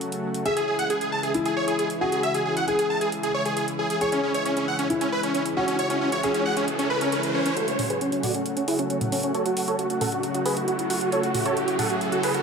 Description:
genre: uplifting trance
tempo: 135 BPM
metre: 4/4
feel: straight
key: F# minor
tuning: A4 = 442 Hz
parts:
  - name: lush unison pad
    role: sustained chords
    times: 0.0-12.4 s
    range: C#3 to F#4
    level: -29 LUFS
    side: equal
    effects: chorus
  - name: big-room dance drum kit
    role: drums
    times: 0.0-12.4 s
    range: hi-hat, toms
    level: -32 LUFS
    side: right 1 dB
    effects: overdrive
  - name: supersaw chords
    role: melody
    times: 0.5-12.4 s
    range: C#4 to A5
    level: -25 LUFS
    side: right 1 dB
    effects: low-pass filter, dub echo
  - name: dark concert grand piano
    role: second line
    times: 0.5-6.8 s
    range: E4 to G#4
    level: -28 LUFS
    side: left 3 dB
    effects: dub echo
  - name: riser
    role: sound effects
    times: 5.5-12.4 s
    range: none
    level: -31 LUFS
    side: right 1 dB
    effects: none
room: moderate lush hall reverb, RT60 1.8 s, digital ambience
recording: none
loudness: -22 LUFS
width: side -5 dB against mid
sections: 0.0-7.6 A section; 7.6-12.4 B section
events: riser 5.5-7.6, 7.6-12.4; build-up 7.6-12.4; filter sweep on supersaw synth 7.6-12.4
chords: 0.5 C#m; 7.6 F#m

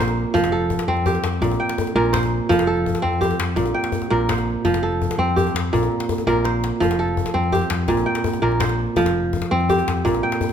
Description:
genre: west african traditional, West African string and xylophone music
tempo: 111 BPM (dotted quarters)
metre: 12/8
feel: straight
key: F major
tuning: A4 = 439 Hz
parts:
  - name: kora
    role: arpeggios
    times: 0.0-10.5 s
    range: Bb2 to G5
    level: -20 LUFS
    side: right 2 dB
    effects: none
  - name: hollow-body short-scale fingered electric bass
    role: bass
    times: 0.0-10.2 s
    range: F1 to F2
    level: -25 LUFS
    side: left 1 dB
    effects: none
  - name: djembe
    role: percussion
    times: 0.1-10.5 s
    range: none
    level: -26 LUFS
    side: left 7 dB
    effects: none
room: moderate recital hall reverb, RT60 1.4 s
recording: none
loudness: -18 LUFS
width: side -8 dB against mid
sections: 0.0-10.5 A section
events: drum fill 6.3-6.8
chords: 0.3 F; 1.4 Gmadd11/Bb; 2.5 F; 3.6 Gmadd11/Bb; 4.6 F; 5.7 Bbsus2; 6.8 F; 7.9 Gmadd11/Bb; 9.0 F5

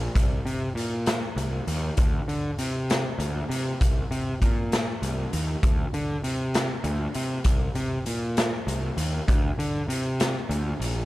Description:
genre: psychedelic rock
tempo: 66 BPM (dotted quarters)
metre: 6/8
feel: straight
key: unclear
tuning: A4 = 440 Hz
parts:
  - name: fuzz picked electric bass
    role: bass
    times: 0.0-11.0 s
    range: Bb1 to D3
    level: -27 LUFS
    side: equal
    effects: overdrive
  - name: raw garage drum kit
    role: drums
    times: 0.2-11.0 s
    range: hi-hat, kick drum, snare drum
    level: -26 LUFS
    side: equal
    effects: none
room: little or no reverb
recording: none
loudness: -24 LUFS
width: side -17 dB against mid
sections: 0.0-11.1 A section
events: none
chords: none

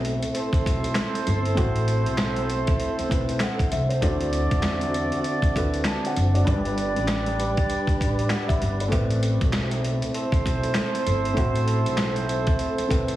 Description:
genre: hip hop, boom-bap hip-hop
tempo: 98 BPM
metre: 4/4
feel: swing 60% on 16ths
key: A dorian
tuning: A4 = 441 Hz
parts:
  - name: dark upright piano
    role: accompaniment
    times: 0.0-13.2 s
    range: G2 to A5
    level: -30 LUFS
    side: left 1 dB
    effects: high-pass filter, low-pass filter
  - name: mellow tonewheel organ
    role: sustained chords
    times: 0.0-13.2 s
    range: D3 to B4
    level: -31 LUFS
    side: right 1 dB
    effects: chorus vibrato, slow rotary speaker, high-pass filter, low-pass filter
  - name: upright bass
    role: bass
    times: 0.0-13.2 s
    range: F#1 to E2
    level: -26 LUFS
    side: equal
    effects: none
  - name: dusty soul sampler-style drum kit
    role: drums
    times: 0.0-13.2 s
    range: handclaps, hi-hat, kick drum, snare drum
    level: -26 LUFS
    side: equal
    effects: none
  - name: mellow horn section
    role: stabs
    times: 0.3-13.2 s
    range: E4 to D5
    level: -29 LUFS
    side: right 2 dB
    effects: high-pass filter, low-pass filter, tape echo
room: small room reverb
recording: heavily compressed radio sound, multiband compression, vinyl crackle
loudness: -21 LUFS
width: side -14 dB against mid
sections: 0.0-13.2 A section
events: none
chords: 0.0 Amadd9; 4.0 D7; 6.5 G; 8.9 Amadd9

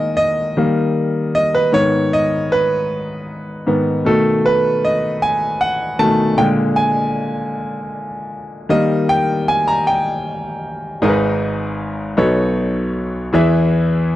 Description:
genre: gospel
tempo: 52 BPM (dotted quarters)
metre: 6/8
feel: straight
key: G# harmonic minor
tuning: A4 = 440 Hz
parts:
  - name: bright grand piano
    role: solo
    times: 0.0-14.2 s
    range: G#1 to A#5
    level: -15 LUFS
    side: equal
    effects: none
room: light reverb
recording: dry, close 1970s-style studio recording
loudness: -15 LUFS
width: side -14 dB against mid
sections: 0.0-11.0 A section; 11.0-14.2 B section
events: grand piano solo 0.0-11.0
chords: 0.0 D#sus4; 0.6 D#; 1.7 G#m; 4.1 B7; 6.4 A#7; 8.7 D#; 11.0 G#m; 12.2 B9; 13.3 E

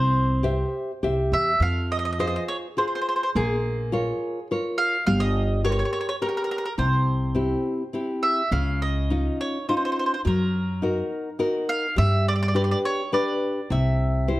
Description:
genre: italian folk, Italian serenade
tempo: 104 BPM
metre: 3/4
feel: straight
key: unclear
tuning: A4 = 440 Hz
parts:
  - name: mandolin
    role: melody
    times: 0.0-14.4 s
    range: Ab4 to F5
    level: -26 LUFS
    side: right 1 dB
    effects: none
  - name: nylon-string guitar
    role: accompaniment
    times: 0.0-14.4 s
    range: C3 to E5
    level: -26 LUFS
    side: left 1 dB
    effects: none
  - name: upright bass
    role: bass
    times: 0.0-14.4 s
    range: G1 to G2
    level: -24 LUFS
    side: equal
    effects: none
room: light reverb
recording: none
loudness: -22 LUFS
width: side -17 dB against mid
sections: 0.0-14.4 A section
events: none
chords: 0.0 C; 1.6 Fm; 3.4 Bbm; 5.1 Gdim; 6.8 C; 8.5 Dbadd9; 10.3 Gb6; 12.0 G; 13.7 C

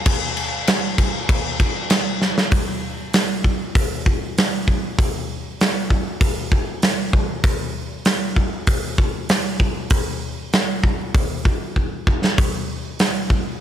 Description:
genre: rock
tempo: 97 BPM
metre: 4/4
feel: straight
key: none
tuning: none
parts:
  - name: big rock drum kit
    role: drums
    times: 0.1-13.4 s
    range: crash cymbal, hi-hat, kick drum, snare drum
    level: -18 LUFS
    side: equal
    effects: none
room: little or no reverb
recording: none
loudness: -18 LUFS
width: side -10 dB against mid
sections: 0.0-2.5 A section; 2.5-13.6 B section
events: drum fill 2.2-2.5, 11.8-12.4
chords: none

